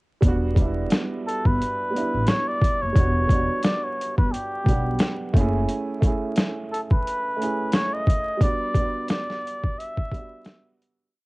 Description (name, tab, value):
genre	lo-fi hip hop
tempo	88 BPM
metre	4/4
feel	swing 58% on 16ths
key	E dorian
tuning	A4 = 440 Hz
part	dark upright piano	accompaniment	0.2-11.2 s	F#3 to F#5	-29 LUFS	right 3 dB	cassette tape, low-pass filter
part	upright bass	bass	0.2-5.6 s	E1 to B1	-24 LUFS	equal	none
part	boom bap sampler-style drum kit	drums	0.2-11.0 s	hi-hat, kick drum, snare drum	-21 LUFS	equal	overdrive, cassette tape
part	trumpet with cup mute	melody	1.3-10.8 s	G4 to E5	-26 LUFS	equal	low-pass filter, cassette tape
room	small room ambience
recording	home recording on cassette, vinyl crackle, nothing above 10.8 kHz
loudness	-21 LUFS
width	side -23 dB against mid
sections	0.2-11.1 A section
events	break 5.7-11.1; fade-out 8.4-11.1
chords	0.2 Em7; 5.3 F#m7 (rootless); 8.4 Em7